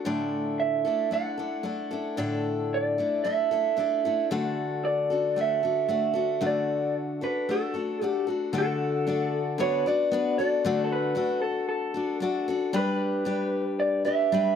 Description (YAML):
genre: rock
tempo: 114 BPM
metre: 4/4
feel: straight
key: D major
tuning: A4 = 440 Hz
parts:
  - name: picked steel-string acoustic guitar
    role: accompaniment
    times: 0.0-14.6 s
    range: A2 to B4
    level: -28 LUFS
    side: left 3 dB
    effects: plate reverb
  - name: electric guitar through a small old amp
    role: melody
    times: 0.6-14.5 s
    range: A4 to F#5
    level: -26 LUFS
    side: right 2 dB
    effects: plate reverb
room: moderate studio reverb, RT60 0.6 s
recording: none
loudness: -24 LUFS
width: side -8 dB against mid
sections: 0.0-8.5 A section; 8.5-14.6 B section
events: none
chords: 0.0 Asus4; 4.3 D; 9.6 Bm/D; 10.4 D; 12.7 G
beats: | 0.05 0.58 1.11 1.65 | 2.18 2.72 3.25 3.78 | 4.31 4.84 5.37 5.90 | 6.43 6.96 7.49 8.02 | 8.54 9.07 9.59 10.12 | 10.64 11.17 11.69 12.21 | 12.74 13.27 13.79 14.32